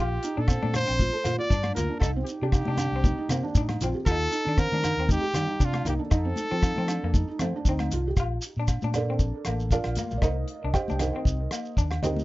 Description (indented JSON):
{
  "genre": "highlife guitar band",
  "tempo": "117 BPM",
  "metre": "4/4",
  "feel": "swing 53% on 16ths",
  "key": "Bb major",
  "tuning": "A4 = 440 Hz",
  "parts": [
    { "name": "warm trumpet", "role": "melody", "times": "0.0-7.6 s", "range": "F4 to D5", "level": "-30 LUFS", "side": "equal", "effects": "none" },
    { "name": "electric guitar through a small old amp", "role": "accompaniment", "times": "0.0-12.2 s", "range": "G3 to F4", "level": "-35 LUFS", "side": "left 4 dB", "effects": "none" },
    { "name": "felt-muted upright piano", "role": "arpeggios", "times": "0.0-12.2 s", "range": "C4 to G5", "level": "-32 LUFS", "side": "right 4 dB", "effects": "tape echo" },
    { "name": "fingered electric bass", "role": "bass", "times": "0.0-12.2 s", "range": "A1 to F3", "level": "-29 LUFS", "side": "equal", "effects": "none" },
    { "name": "damped 70s drum kit", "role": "drums", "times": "0.2-12.2 s", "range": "hi-hat, kick drum, rim click", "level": "-26 LUFS", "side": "equal", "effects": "none" },
    { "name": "shekere", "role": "percussion", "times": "0.2-12.2 s", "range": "none", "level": "-32 LUFS", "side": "equal", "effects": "none" },
    { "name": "agogo bells", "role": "percussion", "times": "0.5-12.0 s", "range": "none", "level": "-40 LUFS", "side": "right 2 dB", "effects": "none" },
    { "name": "congas", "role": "percussion", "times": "0.6-12.2 s", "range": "none", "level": "-36 LUFS", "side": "left 2 dB", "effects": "none" }
  ],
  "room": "little or no reverb",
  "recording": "nothing above 7.6 kHz",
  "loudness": "-24 LUFS",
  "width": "side -18 dB against mid",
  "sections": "0.0-8.2 A section; 8.2-12.2 B section",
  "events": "felt piano solo 8.2-12.2",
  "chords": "0.0 Bb; 4.1 Ebmaj7; 6.1 F7; 8.2 Bbmaj7; 10.2 Cm7"
}